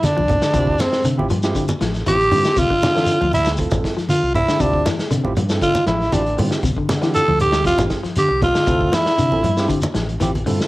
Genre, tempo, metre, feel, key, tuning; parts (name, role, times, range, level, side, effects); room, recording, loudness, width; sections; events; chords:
afrobeat; 118 BPM; 4/4; straight; D minor; A4 = 441 Hz
raspy tenor saxophone; melody; 0.0-9.7 s; C4 to A4; -18 LUFS; right 1 dB
electric guitar at the edge of break-up; arpeggios; 0.0-10.6 s; C3 to G3; -25 LUFS; left 3 dB; phaser, cassette tape
deep dub fingered electric bass; bass; 0.0-10.6 s; A1 to D3; -23 LUFS; equal
vintage drum kit; drums; 0.0-10.7 s; hi-hat, kick drum, snare drum; -25 LUFS; equal
congas; percussion; 0.0-10.6 s; -24 LUFS; right 1 dB
shekere; percussion; 0.0-10.7 s; -29 LUFS; left 1 dB
barky tine electric piano; accompaniment; 0.5-10.7 s; C4 to A4; -27 LUFS; right 3 dB; cassette tape
light reverb, small room ambience; home recording on cassette; -15 LUFS; side -18 dB against mid
0.0-10.7 A section
tenor saxophone solo 0.0-10.7
0.0 Dm11